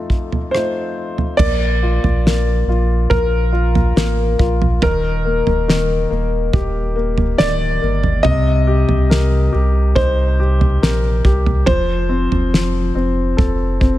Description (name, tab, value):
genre	pop ballad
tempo	70 BPM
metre	4/4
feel	straight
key	Bb major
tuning	A4 = 441 Hz
part	clear grand piano	melody	0.0-14.0 s	A4 to Eb5	-22 LUFS	right 1 dB	none
part	clear grand piano	accompaniment	0.0-14.0 s	F2 to Bb4	-20 LUFS	left 4 dB	none
part	damped 70s drum kit	drums	0.1-14.0 s	crash cymbal, kick drum, rim click, snare drum, toms	-18 LUFS	right 1 dB	none
part	warm sub bass	bass	1.4-14.0 s	D1 to C2	-17 LUFS	equal	none
room	small room reverb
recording	none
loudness	-14 LUFS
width	side -14 dB against mid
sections	0.0-1.4 A section; 1.4-14.0 B section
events	none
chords	0.0 F7; 1.4 Bb; 4.8 Ebmaj7; 8.2 Cm7; 11.7 F